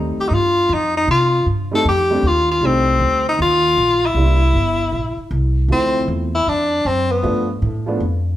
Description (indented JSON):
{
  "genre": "jazz, small-group swing and bop",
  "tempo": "156 BPM",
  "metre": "4/4",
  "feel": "swing 64% on 8ths",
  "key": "unclear",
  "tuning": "A4 = 439 Hz",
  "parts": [
    { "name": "warm upright piano", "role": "accompaniment", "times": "0.0-8.0 s", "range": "F3 to E4", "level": "-23 LUFS", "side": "right 1 dB", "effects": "none" },
    { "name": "upright bass", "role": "bass", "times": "0.0-8.4 s", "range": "G1 to C3", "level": "-19 LUFS", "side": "equal", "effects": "none" },
    { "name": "bright tenor saxophone", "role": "melody", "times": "0.2-7.5 s", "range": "B3 to A4", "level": "-16 LUFS", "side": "left 1 dB", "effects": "none" }
  ],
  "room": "moderate large studio reverb, RT60 1.2 s",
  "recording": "band playing live in one room",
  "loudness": "-15 LUFS",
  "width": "side -13 dB against mid",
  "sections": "0.0-8.4 A section",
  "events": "none",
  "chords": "0.0 F9; 4.2 C9; 5.7 Dm7; 7.2 G9",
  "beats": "0.32 0.70 | 1.08 1.47 1.85 2.24 | 2.62 3.01 3.39 3.78 | 4.16 4.54 4.93 5.31 | 5.70 6.08 6.46 6.85 | 7.23 7.62 8.00"
}